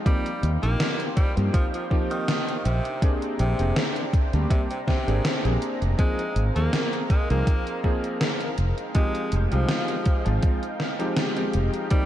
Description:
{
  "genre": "vaporwave",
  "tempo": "81 BPM",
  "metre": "4/4",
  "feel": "swing 54% on 16ths",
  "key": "F dorian",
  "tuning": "A4 = 441 Hz",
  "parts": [
    { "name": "warm electric grand piano", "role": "accompaniment", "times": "0.0-12.1 s", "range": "F3 to Ab4", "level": "-30 LUFS", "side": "equal", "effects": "analog chorus, analog delay" },
    { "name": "lush unison pad", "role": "sustained chords", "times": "0.0-12.1 s", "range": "Ab3 to Bb5", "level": "-35 LUFS", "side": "equal", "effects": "chorus" },
    { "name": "bright tenor saxophone", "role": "melody", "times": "0.1-12.1 s", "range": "C3 to Bb3", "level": "-31 LUFS", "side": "equal", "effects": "tape echo" },
    { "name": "electronic kick drum", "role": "drums", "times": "0.1-12.1 s", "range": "none", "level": "-21 LUFS", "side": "equal", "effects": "overdrive" },
    { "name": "gated 80s digital drum machine", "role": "drums", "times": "0.1-12.1 s", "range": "hi-hat, snare drum", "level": "-29 LUFS", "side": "left 1 dB", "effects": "gated reverb, gated reverb snare, overdrive" },
    { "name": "mellow fretless electric bass", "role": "bass", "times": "0.4-11.7 s", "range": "F1 to G2", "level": "-22 LUFS", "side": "equal", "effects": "wide subtle chorus" }
  ],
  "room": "light reverb",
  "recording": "cassette tape",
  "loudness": "-22 LUFS",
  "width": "side -12 dB against mid",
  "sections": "0.0-12.1 A section",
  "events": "none",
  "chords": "0.1 Eb69; 2.7 Bb13; 6.0 Ab69; 8.6 Fm9"
}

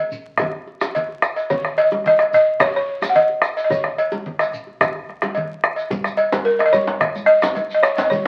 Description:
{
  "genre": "west african traditional, West African drum ensemble",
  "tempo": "109 BPM",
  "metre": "4/4",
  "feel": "straight",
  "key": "unclear",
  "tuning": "A4 = 439 Hz",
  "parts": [
    { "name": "congas", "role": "percussion", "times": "0.1-8.2 s", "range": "none", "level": "-34 LUFS", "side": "equal", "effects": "none" },
    { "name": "shekere", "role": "percussion", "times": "0.1-8.2 s", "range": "none", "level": "-41 LUFS", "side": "equal", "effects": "none" },
    { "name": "bombo", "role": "percussion", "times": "0.4-8.2 s", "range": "none", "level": "-24 LUFS", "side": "equal", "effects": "none" },
    { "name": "cowbell", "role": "percussion", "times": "0.4-8.1 s", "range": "none", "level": "-25 LUFS", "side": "equal", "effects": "none" },
    { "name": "djembe", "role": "percussion", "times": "0.4-8.2 s", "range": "none", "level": "-32 LUFS", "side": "equal", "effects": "none" },
    { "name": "balafon", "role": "melody", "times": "1.5-8.3 s", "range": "A#4 to F#5", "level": "-18 LUFS", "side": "equal", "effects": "none" },
    { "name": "djembe", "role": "percussion", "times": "6.3-8.1 s", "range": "none", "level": "-25 LUFS", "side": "equal", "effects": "none" }
  ],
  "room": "moderate studio reverb, RT60 0.9 s",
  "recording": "very old 78 rpm record, vinyl crackle",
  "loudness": "-19 LUFS",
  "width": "mono",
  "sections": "0.0-5.9 A section; 5.9-8.3 B section",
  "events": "none",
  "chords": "none"
}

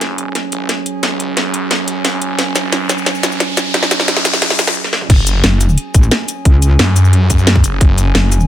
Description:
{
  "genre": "dark technical drum and bass",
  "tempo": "177 BPM",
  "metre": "4/4",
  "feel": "straight",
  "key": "unclear",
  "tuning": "A4 = 440 Hz",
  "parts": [
    { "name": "metallic inharmonic drone", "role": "sustained chords", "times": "0.0-8.5 s", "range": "F#3 to G#4", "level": "-22 LUFS", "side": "right 4 dB", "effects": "chorus, built-in reverb, vintage 12-bit sampler grit, sidechain pumping" },
    { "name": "snarling distorted saw bass", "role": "bass", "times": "0.0-8.1 s", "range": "F#1 to F#2", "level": "-16 LUFS", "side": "equal", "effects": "distortion, tube saturation, high-pass filter" },
    { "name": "drum and bass drum kit", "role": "drums", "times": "0.0-8.5 s", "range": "crash cymbal, hi-hat, shaker, snare drum, toms", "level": "-15 LUFS", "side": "equal", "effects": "high-pass filter on hats, high-pass filter on snare, high-pass filter on perc, high-pass filter on toms, high-pass filter on cymbals, high-pass filter on room" },
    { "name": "riser", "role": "sound effects", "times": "1.5-4.8 s", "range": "none", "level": "-21 LUFS", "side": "left 2 dB", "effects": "none" },
    { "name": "electronic kick drum", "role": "drums", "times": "5.1-7.9 s", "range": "none", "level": "-10 LUFS", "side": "equal", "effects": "none" },
    { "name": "metallic wobble bass", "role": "bass", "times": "5.4-8.5 s", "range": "F#1 to C#2", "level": "-11 LUFS", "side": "equal", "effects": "chorus" }
  ],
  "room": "digital ambience",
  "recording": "none",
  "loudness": "-11 LUFS",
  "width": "side -12 dB against mid",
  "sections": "0.0-5.1 A section; 5.1-8.5 B section",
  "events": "build-up 0.0-5.1; drum fill 0.0-4.8, 4.8; riser 1.5-4.8; stop 4.8-5.1; drop 5.1-8.5",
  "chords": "0.0 F#sus2"
}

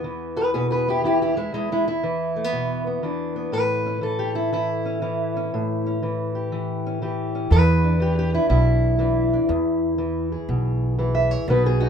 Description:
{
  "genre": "acoustic country blues, solo or duo",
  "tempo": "120 BPM",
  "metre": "4/4",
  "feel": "swing 66% on 8ths",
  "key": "E mixolydian",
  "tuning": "A4 = 439 Hz",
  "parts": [
    { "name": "fingerpicked steel-string acoustic guitar", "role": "melody", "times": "0.0-11.9 s", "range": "E2 to E5", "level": "-22 LUFS", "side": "equal", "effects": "none" },
    { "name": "upright bass", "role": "bass", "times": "7.5-11.9 s", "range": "B1 to E2", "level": "-20 LUFS", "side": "right 1 dB", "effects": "none" }
  ],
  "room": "wet booth ambience, RT60 0.2 s",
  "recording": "minimal, uncompressed stereo recording",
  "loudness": "-20 LUFS",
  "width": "side -7 dB against mid",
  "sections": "0.0-11.9 A section",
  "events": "none",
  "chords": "0.0 E; 3.5 A7; 7.5 E7"
}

